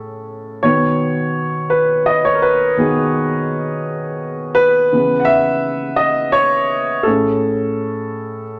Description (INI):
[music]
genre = pop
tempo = 56 BPM (dotted quarters)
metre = 6/8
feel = straight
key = unclear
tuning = A4 = 439 Hz
[part]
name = warm baby grand piano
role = solo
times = 0.0-8.6 s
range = A2 to F#5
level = -17 LUFS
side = equal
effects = none
[sound]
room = moderate large studio reverb, RT60 1.1 s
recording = none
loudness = -17 LUFS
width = mono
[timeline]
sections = 0.0-8.6 A section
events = grand piano solo 0.0-8.6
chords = 0.0 Amaj7; 0.6 G#m/B; 4.9 C#m7; 7.1 Amaj7